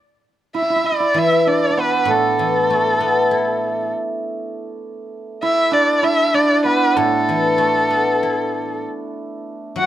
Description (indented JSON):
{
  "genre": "chinese traditional, Chinese chamber ensemble",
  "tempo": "97 BPM",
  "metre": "4/4",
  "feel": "straight",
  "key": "unclear",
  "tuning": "A4 = 440 Hz",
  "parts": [
    { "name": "hammered dulcimer", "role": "second line", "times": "0.5-9.9 s", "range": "A3 to F#4", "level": "-21 LUFS", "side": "right 4 dB", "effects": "none" },
    { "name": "warm erhu", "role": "melody", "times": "0.6-9.9 s", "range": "A4 to F#5", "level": "-18 LUFS", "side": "left 1 dB", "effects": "none" },
    { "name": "guzheng", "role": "accompaniment", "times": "1.1-9.9 s", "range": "A2 to E4", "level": "-21 LUFS", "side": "left 4 dB", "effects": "none" }
  ],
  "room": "light reverb",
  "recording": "close, detailed microphones",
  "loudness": "-15 LUFS",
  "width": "side -12 dB against mid",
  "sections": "0.0-9.9 A section",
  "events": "none",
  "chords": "none"
}